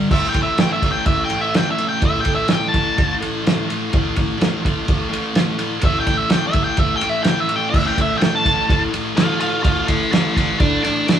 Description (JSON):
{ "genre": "garage rock duo or trio", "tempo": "126 BPM", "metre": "4/4", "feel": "straight", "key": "A minor", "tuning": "A4 = 440 Hz", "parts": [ { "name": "thick fuzz guitar", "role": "riff", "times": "0.0-11.2 s", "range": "A2 to A3", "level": "-21 LUFS", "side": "equal", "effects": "distortion" }, { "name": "octave-fuzz lead guitar", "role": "melody", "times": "0.1-11.2 s", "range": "C5 to D6", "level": "-20 LUFS", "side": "equal", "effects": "distortion" }, { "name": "cloth-damped thuddy drum kit", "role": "drums", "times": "0.1-11.2 s", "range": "crash cymbal, kick drum, ride cymbal, snare drum", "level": "-19 LUFS", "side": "right 1 dB", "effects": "none" } ], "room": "moderate studio reverb, RT60 0.7 s", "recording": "rough rehearsal-room recording, small room reverb", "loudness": "-16 LUFS", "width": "side -9 dB against mid", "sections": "0.1-11.2 A section", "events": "lead electric guitar solo 0.1-11.2", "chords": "0.1 A5" }